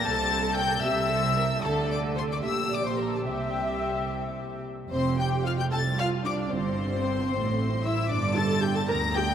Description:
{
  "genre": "quick classical-period movement for string orchestra",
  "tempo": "75 BPM (dotted quarters)",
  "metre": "6/8",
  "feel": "straight",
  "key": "F major",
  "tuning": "A4 = 440 Hz",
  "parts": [
    { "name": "warm symphonic violin section", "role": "melody", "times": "0.0-9.3 s", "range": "G5 to Bb6", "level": "-31 LUFS", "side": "left 6 dB", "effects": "none" },
    { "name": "warm symphonic violin section", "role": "second line", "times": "0.0-9.3 s", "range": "G4 to Bb5", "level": "-31 LUFS", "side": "left 2 dB", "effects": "none" },
    { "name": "dark symphonic viola section", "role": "accompaniment", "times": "0.0-9.2 s", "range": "C4 to E5", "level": "-32 LUFS", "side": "equal", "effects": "none" },
    { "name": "warm chamber double bass section", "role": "bass", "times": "0.0-9.3 s", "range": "F1 to D2", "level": "-31 LUFS", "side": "right 3 dB", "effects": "none" },
    { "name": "warm symphonic cello section", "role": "bass", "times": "0.0-9.3 s", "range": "C2 to D3", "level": "-31 LUFS", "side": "right 4 dB", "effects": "none" }
  ],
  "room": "wet cathedral reverb, RT60 6.1 s",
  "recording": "in a vast, echoing space",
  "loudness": "-24 LUFS",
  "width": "side -9 dB against mid",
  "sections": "0.0-4.9 A section; 4.9-9.3 B section",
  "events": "none",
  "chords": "0.0 C; 1.6 D5; 2.4 Gm/Bb; 3.3 C; 4.9 F5; 6.5 C5/G; 7.3 Am; 8.1 G5"
}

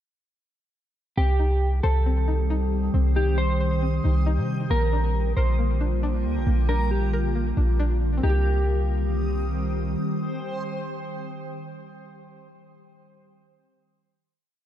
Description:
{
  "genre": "hip hop, atmospheric cloud-rap",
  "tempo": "136 BPM",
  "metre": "4/4",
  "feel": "half-time",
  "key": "C minor",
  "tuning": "A4 = 442 Hz",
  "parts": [
    { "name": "mellow electric guitar", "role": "melody", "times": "1.2-9.5 s", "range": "G4 to C5", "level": "-30 LUFS", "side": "equal", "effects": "analog chorus, low-pass filter, digital delay" },
    { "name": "ethereal airy pad", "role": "sustained chords", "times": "1.8-11.5 s", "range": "D3 to G4", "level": "-29 LUFS", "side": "equal", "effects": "ensemble chorus, built-in reverb" },
    { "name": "string-like resonator pluck", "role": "arpeggios", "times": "1.2-11.5 s", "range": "Bb3 to C5", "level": "-35 LUFS", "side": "left 3 dB", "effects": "chorus, low-pass filter, digital delay" },
    { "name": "clean 808-style bass", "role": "bass", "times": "1.2-10.0 s", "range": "Bb1 to C3", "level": "-22 LUFS", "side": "equal", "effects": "none" },
    { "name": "backwards swelling texture", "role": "texture", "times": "2.0-11.5 s", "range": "Bb4 to Eb6", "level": "-39 LUFS", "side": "equal", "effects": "built-in reverb" }
  ],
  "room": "light reverb, digital ambience",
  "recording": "dark, warm production",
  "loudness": "-21 LUFS",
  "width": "side -11 dB against mid",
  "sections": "1.2-8.2 breakdown; 8.2-11.8 final chord",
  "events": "none",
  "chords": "1.2 Cm; 4.7 Bb6; 8.2 Cm"
}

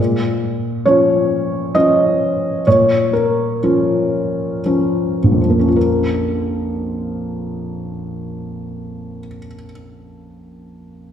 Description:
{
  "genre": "neoclassical minimalist piano",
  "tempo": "52-69 BPM",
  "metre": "3/4",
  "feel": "rubato",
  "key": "Bb minor",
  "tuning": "A4 = 439 Hz",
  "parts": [
    { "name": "felt-muted upright piano", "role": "solo", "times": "0.0-11.1 s", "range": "Bb1 to Eb5", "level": "-15 LUFS", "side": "equal", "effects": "none" }
  ],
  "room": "wet recital hall reverb, RT60 1.7 s",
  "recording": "recorded in a church or concert hall",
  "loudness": "-14 LUFS",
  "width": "side -9 dB against mid",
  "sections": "0.0-5.8 A section; 5.8-9.1 B section",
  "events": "slowing down 0.0-5.8",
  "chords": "0.0 Bbm"
}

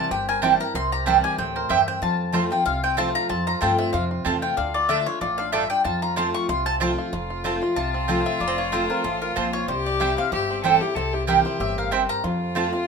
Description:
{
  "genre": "bluegrass",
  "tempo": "188 BPM",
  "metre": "4/4",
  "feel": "swing 55% on 8ths",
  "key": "F major",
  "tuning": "A4 = 441 Hz",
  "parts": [
    { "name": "bluegrass banjo", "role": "melody", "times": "0.0-12.9 s", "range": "G3 to Bb4", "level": "-30 LUFS", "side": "right 4 dB", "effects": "none" },
    { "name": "mandolin", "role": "melody", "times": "0.0-12.2 s", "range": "A4 to Db6", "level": "-25 LUFS", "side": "left 4 dB", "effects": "none" },
    { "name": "picked steel-string acoustic guitar", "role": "accompaniment", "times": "0.0-12.9 s", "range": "F2 to F4", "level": "-29 LUFS", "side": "left 2 dB", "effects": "none" },
    { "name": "upright bass", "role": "bass", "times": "0.1-12.7 s", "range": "F1 to G2", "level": "-30 LUFS", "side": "equal", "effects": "none" },
    { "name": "mandolin", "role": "stabs", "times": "0.4-12.7 s", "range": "A3 to A5", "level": "-22 LUFS", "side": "right 10 dB", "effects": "none" },
    { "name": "clear fiddle", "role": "second line", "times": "7.1-12.9 s", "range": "F4 to A4", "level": "-27 LUFS", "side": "left 4 dB", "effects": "none" }
  ],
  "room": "moderate studio reverb, RT60 0.7 s",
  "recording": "minimal, uncompressed stereo recording",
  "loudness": "-20 LUFS",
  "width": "side -5 dB against mid",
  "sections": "0.0-7.1 A section; 7.1-12.9 B section",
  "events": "mandolin solo 0.0-7.1",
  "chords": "0.0 C; 2.0 F; 4.6 Dm; 5.8 F; 9.7 C; 12.2 F"
}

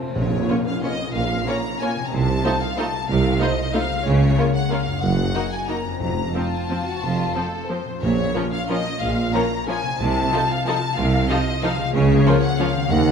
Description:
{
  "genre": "classical, orchestral ballroom waltz",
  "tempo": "168-202 BPM",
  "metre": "3/4",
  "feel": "rubato",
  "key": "Bb minor",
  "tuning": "A4 = 440 Hz",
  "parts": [
    { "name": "concert harp", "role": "arpeggios", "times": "0.0-13.1 s", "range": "F2 to C6", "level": "-29 LUFS", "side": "left 7 dB", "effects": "none" },
    { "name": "warm tuba", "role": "bass", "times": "0.1-13.1 s", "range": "F1 to Eb2", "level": "-28 LUFS", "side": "right 2 dB", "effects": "none" },
    { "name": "warm symphonic violin section", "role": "melody", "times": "0.2-13.1 s", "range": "Db5 to Bb5", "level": "-26 LUFS", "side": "left 4 dB", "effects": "none" },
    { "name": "warm symphonic cello section", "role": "bass", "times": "0.2-13.1 s", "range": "Eb2 to Db3", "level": "-24 LUFS", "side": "right 2 dB", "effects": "none" },
    { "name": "warm symphonic double bass section", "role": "bass", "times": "0.2-13.1 s", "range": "F1 to Eb2", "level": "-27 LUFS", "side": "right 4 dB", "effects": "none" },
    { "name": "tam-tam", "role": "percussion", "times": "0.2-1.4 s", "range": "none", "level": "-35 LUFS", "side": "left 2 dB", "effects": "none" },
    { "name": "timpani", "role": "percussion", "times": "0.2-0.6, 6.0-8.5 s", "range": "F2 to Bb2", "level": "-30 LUFS", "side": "right 1 dB", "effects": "none" },
    { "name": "warm symphonic violin section", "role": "second line", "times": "0.5-12.7 s", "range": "F4 to Db5", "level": "-30 LUFS", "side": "left 3 dB", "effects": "none" },
    { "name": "rich symphonic viola section", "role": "accompaniment", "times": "0.5-12.7 s", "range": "F3 to Eb4", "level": "-28 LUFS", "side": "right 1 dB", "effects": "none" }
  ],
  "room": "wet concert hall reverb, RT60 2.0 s",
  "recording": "minimal, uncompressed stereo recording",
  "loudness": "-19 LUFS",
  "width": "side -6 dB against mid",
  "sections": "0.2-13.1 A section",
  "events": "band accent 0.2-0.5",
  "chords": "0.2 Bbm; 2.1 F7/C; 4.1 Bbm/Db; 5.0 Ebm/Gb; 6.0 F; 8.0 Bbm; 10.0 F7/C; 11.9 Bbm/Db"
}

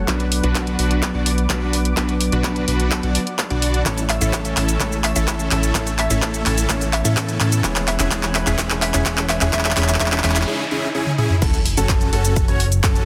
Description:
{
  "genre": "EDM, festival progressive house",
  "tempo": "127 BPM",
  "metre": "4/4",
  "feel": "straight",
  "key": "A major",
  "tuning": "A4 = 440 Hz",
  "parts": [
    { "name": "mellow electric guitar", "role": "accompaniment", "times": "0.0-10.5 s", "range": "E3 to B4", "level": "-28 LUFS", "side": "equal", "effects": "spring reverb, sidechain pumping, tape echo" },
    { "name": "lush unison pad", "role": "sustained chords", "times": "0.0-10.4 s", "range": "B4 to E6", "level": "-35 LUFS", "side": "equal", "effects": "chorus, sidechain pumping" },
    { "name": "fat analog bass", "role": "bass", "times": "0.0-13.1 s", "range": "E1 to A2", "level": "-24 LUFS", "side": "equal", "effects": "sidechain pumping" },
    { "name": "riser, noise sweep and sub drop", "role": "sound effects", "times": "3.4-13.1 s", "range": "none", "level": "-34 LUFS", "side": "equal", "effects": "none" },
    { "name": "dense compressed supersaw", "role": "riff", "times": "0.1-13.1 s", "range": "C#4 to D5", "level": "-28 LUFS", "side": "equal", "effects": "sidechain pumping, low-pass filter, tape echo" },
    { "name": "electronic kick drum", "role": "drums", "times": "0.1-12.9 s", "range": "none", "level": "-26 LUFS", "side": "equal", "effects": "overdrive, high-pass filter on kick" },
    { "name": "pop drum kit", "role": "drums", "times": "0.1-13.1 s", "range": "cabasa, crash cymbal, handclaps, hi-hat, toms", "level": "-25 LUFS", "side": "equal", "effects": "overdrive" },
    { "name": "hollow square pluck", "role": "melody", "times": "4.1-10.4 s", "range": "E5", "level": "-30 LUFS", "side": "equal", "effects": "chorus, tape echo" },
    { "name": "warm concert grand piano", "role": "arpeggios", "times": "11.4-13.1 s", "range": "A4 to C#5", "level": "-30 LUFS", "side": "equal", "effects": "sidechain pumping, tape echo" }
  ],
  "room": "light reverb",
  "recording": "dense, heavily limited modern master",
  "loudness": "-19 LUFS",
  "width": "mono",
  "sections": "0.0-11.4 A section; 11.4-13.1 B section",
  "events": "build-up 0.0-11.4; drum fill 0.0-10.5, 11.1-11.4; noise sweep 9.5-11.4; drop 11.4-13.1; impact 11.4-13.1",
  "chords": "0.1 Bm; 3.9 A; 7.6 Eadd9; 11.4 F#m"
}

